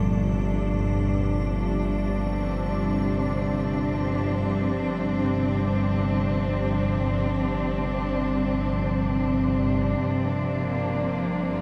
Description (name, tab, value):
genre	dark ambient drone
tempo	free time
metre	none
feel	none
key	G minor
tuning	A4 = 440 Hz
part	muted studio cello section	sustained chords	0.0-11.6 s	G2 to D4	-27 LUFS	equal	none
part	analog drone	drone	0.0-11.6 s	G1 to G2	-29 LUFS	equal	chorus
part	icy glass pad	texture	0.0-11.6 s	A3 to D5	-44 LUFS	equal	chorus, built-in reverb
room	wet huge ambient reverb, RT60 8.1 s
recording	none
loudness	-25 LUFS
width	mono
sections	0.0-10.0 A section; 10.0-11.6 B section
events	fade-out on ambient pad 0.0-10.0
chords	0.0 Gmadd9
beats	free time